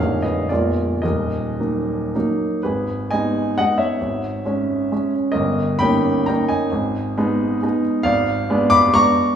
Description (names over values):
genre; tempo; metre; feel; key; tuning
classical, romantic triple-time dance for piano with dotted rhythms; 103-143 BPM; 3/4; rubato; G# minor; A4 = 440 Hz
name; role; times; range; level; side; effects
warm grand piano; solo; 0.0-9.4 s; Bb0 to D6; -17 LUFS; equal; none
room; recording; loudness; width
wet recital hall reverb, RT60 1.6 s; heard from further back in the room, small room ambience; -17 LUFS; side -8 dB against mid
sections
0.0-2.6 A section; 2.6-9.4 B section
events
none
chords
0.0 Ebm/Bb; 0.5 Bb7b9; 1.0 Ebm; 2.6 G#m; 4.0 C#m/G#; 5.4 D#7/G; 6.7 G#m; 8.1 G#dim7